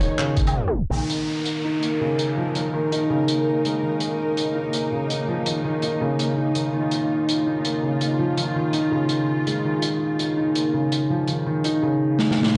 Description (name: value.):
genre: half-time drum and bass.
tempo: 165 BPM.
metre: 4/4.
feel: swing 55% on 16ths, half-time.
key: unclear.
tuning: A4 = 440 Hz.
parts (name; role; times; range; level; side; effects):
dark studio string section; sustained chords; 0.0-11.8 s; Gb3 to Db5; -30 LUFS; equal; sidechain pumping.
felt-muted upright piano; arpeggios; 0.0-12.6 s; Bb2 to Eb4; -24 LUFS; equal; vintage 12-bit sampler grit, low-pass filter, delay.
long sustained 808-style bass; bass; 0.0-0.9 s; Eb1 to Bb1; -26 LUFS; equal; none.
crunchy breakbeat drum kit; drums; 0.0-12.5 s; handclaps, hi-hat, shaker, snare drum, woodblock; -30 LUFS; equal; none.
electronic kick drum; drums; 0.4-0.5 s; none; -23 LUFS; equal; none.
downlifter; sound effects; 0.9-3.8 s; none; -38 LUFS; equal; none.
room: moderate digital room reverb, RT60 1.3 s, studio ambience.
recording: played on a big sound system in a bare room, large studio reverb, tape stop, nothing above 10.8 kHz.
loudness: -23 LUFS.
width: mono.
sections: 0.9-12.6 A section.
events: tape stop 0.6-0.9; drum fill 12.2-12.6.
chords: 0.0 Ebm; 0.9 Eb5.